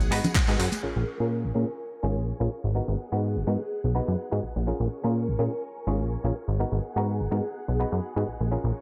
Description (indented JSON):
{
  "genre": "filtered disco house",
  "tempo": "125 BPM",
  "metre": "4/4",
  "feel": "swing 54% on 16ths",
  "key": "G# dorian",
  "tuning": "A4 = 440 Hz",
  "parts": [
    { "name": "phased string machine", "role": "sustained chords", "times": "0.0-8.8 s", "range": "G#4 to C#6", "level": "-39 LUFS", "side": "equal", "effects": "ensemble chorus, phaser, sidechain pumping, low-pass filter" },
    { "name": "plucky analog bass", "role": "bass", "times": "0.0-8.7 s", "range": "F#1 to A#2", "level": "-29 LUFS", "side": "equal", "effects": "sidechain pumping, low-pass filter" },
    { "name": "dusty soul sampler-style drum kit", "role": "drums", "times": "0.0-0.9 s", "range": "crash cymbal, handclaps, hi-hat", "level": "-34 LUFS", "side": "equal", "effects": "overdrive, low-pass filter on hats, studio reverb, low-pass filter on snare, low-pass filter on cymbals" },
    { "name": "congas and tambourine", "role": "percussion", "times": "0.0-0.8, 8.5-8.7 s", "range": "none", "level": "-33 LUFS", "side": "equal", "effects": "sidechain pumping on perc, low-pass filter on perc" },
    { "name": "muted clav", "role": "accompaniment", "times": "0.1-8.8 s", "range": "B3 to C#5", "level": "-35 LUFS", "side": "equal", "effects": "phaser, sidechain pumping, low-pass filter" },
    { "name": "electronic kick drum", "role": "drums", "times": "0.4-0.5 s", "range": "none", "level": "-27 LUFS", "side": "equal", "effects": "studio reverb" }
  ],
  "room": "light reverb, digital ambience",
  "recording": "none",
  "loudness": "-28 LUFS",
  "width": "mono",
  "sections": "0.8-8.8 A section",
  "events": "band accent 0.4",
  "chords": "0.0 G#m7; 0.8 A#m7; 2.5 G#m7; 4.7 A#m7; 6.4 G#m7",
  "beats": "0.35 | 0.83 1.31 1.79 2.27 | 2.75 3.23 3.71 4.19 | 4.67 5.15 5.63 6.11 | 6.59 7.07 7.55 8.03 | 8.51"
}